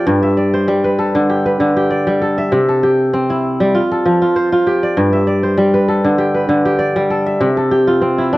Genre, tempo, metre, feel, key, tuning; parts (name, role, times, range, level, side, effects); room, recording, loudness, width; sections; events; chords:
west african traditional; 98 BPM; 4/4; swing 54% on 16ths; G mixolydian; A4 = 441 Hz
kora; solo; 0.0-8.4 s; G2 to E5; -12 LUFS; equal
moderate small room reverb, RT60 0.6 s; worn, warbling old tape, cassette tape, warbly pitch drift, faint mains hum; -12 LUFS; side -18 dB against mid
0.0-5.0 A section; 5.0-8.4 B section
0.1 G; 2.5 C; 3.7 F; 5.0 G; 7.4 C